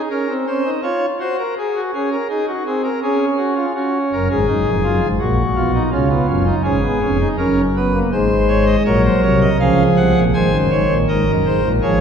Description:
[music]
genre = classical, baroque-style 4-part fugue for pipe organ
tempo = 82 BPM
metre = 3/4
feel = straight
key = unclear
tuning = A4 = 440 Hz
[part]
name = pipe organ, cornet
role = solo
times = 0.0-12.0 s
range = E#1 to G#5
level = -14 LUFS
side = equal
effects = none
[sound]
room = wet concert hall reverb, RT60 1.9 s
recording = heard from further back in the room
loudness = -14 LUFS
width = side -7 dB against mid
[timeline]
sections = 0.0-12.0 A section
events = none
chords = 0.0 C#5; 0.8 C#/E#; 1.6 G#7; 3.0 C#; 3.8 F#; 5.2 F#/A#; 5.9 C#7; 7.4 F#; 8.1 C#5/G#; 9.6 C#; 10.3 G#7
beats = 0.10 0.84 | 1.57 2.30 3.02 | 3.75 4.48 5.20 | 5.92 6.66 7.39 | 8.13 8.86 9.60 | 10.33 11.07 11.82

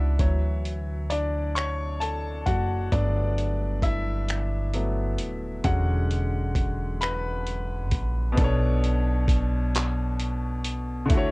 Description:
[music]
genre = slow six-eight R&B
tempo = 44 BPM (dotted quarters)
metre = 6/8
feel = straight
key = B minor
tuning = A4 = 440 Hz
[part]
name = clear baby grand piano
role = accompaniment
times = 0.0-11.3 s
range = B2 to C#6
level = -29 LUFS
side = left 2 dB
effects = none
[part]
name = upright bass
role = bass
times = 0.0-11.3 s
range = D#1 to D2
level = -26 LUFS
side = equal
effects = none
[part]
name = dusty soul sampler-style drum kit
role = drums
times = 0.2-11.3 s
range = finger snaps, handclaps, hi-hat, kick drum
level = -26 LUFS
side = equal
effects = cassette tape
[sound]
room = little or no reverb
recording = home recording on cassette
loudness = -23 LUFS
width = side -25 dB against mid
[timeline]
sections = 0.0-8.4 A section; 8.4-11.3 B section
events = grand piano solo 0.0-8.4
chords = 0.2 Dmaj9; 2.9 Gmaj7; 5.6 E13; 8.4 Bm9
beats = | 0.19 1.55 | 2.92 4.28 | 5.65 7.01 | 8.37 9.74 | 11.10

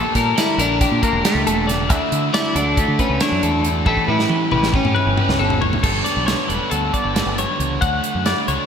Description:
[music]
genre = math rock and midwest emo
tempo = 274 BPM (eighths)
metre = 9/8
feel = straight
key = unclear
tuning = A4 = 435 Hz
[part]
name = clean electric guitar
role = accompaniment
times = 0.0-8.7 s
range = D2 to E4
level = -27 LUFS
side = right 7 dB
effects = none
[part]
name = twelve-string electric guitar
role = arpeggios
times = 0.0-8.7 s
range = G4 to F#5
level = -22 LUFS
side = left 5 dB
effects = ping-pong delay
[part]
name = biting overdriven guitar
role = riff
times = 0.0-8.7 s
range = G2 to G4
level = -25 LUFS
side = equal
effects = none
[part]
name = growling fingered electric bass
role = bass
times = 0.0-8.6 s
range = E1 to D3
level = -23 LUFS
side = equal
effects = overdrive
[part]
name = modern studio drum kit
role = drums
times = 0.2-8.6 s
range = crash cymbal, hi-hat, kick drum, snare drum, toms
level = -22 LUFS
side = equal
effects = gated reverb
[part]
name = electric guitar at the edge of break-up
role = melody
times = 0.4-5.6 s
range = A3 to E4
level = -22 LUFS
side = equal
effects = ping-pong delay
[sound]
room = moderate lush hall reverb, RT60 1.9 s, small room ambience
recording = bright 1980s-style digital production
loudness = -16 LUFS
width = side -7 dB against mid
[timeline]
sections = 0.0-5.8 A section; 5.8-8.7 B section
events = drum fill 3.9-5.8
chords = 0.0 Gmadd9/Bb; 1.9 Dmaj9; 3.9 A7; 5.8 G69; 7.8 Dmaj9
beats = 0.15 0.36 0.58 0.80 1.02 1.24 1.46 1.68 | 1.89 2.11 2.33 2.55 2.77 2.98 3.20 3.42 3.64 | 3.86 4.08 4.30 4.52 4.74 4.96 5.17 5.39 5.61 | 5.83 6.05 6.27 6.49 6.71 6.93 7.15 7.38 7.59 | 7.82 8.04 8.26 8.48

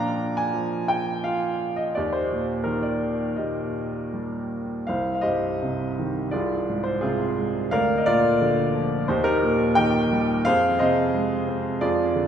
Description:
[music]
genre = classical, lyrical solo piano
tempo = 78-89 BPM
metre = 4/4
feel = rubato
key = Eb major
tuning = A4 = 440 Hz
[part]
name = clear upright piano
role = solo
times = 0.0-12.3 s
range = C2 to Bb5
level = -21 LUFS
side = equal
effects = none
[sound]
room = wet church reverb, RT60 2.6 s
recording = recorded in a church or concert hall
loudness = -21 LUFS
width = side -8 dB against mid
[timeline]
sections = 0.0-4.9 A section; 4.9-12.3 B section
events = none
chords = 0.0 Bb; 2.0 Eb; 4.9 Cm; 6.3 Fm/C; 7.7 Bb/D; 9.1 Eb; 10.4 Fm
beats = 0.55 1.25 | 1.96 2.67 3.38 4.13 | 4.88 5.62 6.33 7.02 | 7.71 8.40 9.08 9.76 | 10.45 11.13 11.81

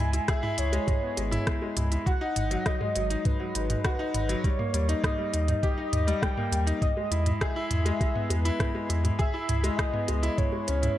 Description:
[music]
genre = piano and strings electronica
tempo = 101 BPM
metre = 4/4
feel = straight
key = G# minor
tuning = A4 = 440 Hz
[part]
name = warm velvety synth lead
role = melody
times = 0.0-11.0 s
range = B4 to G#5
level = -33 LUFS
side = equal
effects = chorus
[part]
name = clear baby grand piano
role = riff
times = 0.0-11.0 s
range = F#3 to G#4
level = -30 LUFS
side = left 2 dB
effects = digital delay
[part]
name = warm sub bass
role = bass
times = 0.0-10.9 s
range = G#1 to E2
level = -27 LUFS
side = equal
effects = sidechain pumping
[part]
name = organic electronic drum kit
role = drums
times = 0.1-10.9 s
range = hi-hat, rim click, toms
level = -32 LUFS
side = right 1 dB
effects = none
[part]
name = electronic kick drum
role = drums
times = 0.3-10.5 s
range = none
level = -28 LUFS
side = equal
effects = none
[sound]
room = light reverb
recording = none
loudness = -25 LUFS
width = side -13 dB against mid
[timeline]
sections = 0.0-11.0 A section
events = none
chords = 0.0 C#m7; 2.1 G#m7; 4.4 D#7; 6.8 Emaj7; 9.2 C#m7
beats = 0.28 0.88 1.47 | 2.07 2.66 3.25 3.85 | 4.44 5.04 5.63 6.22 | 6.82 7.41 8.01 8.60 | 9.20 9.79 10.38 10.98

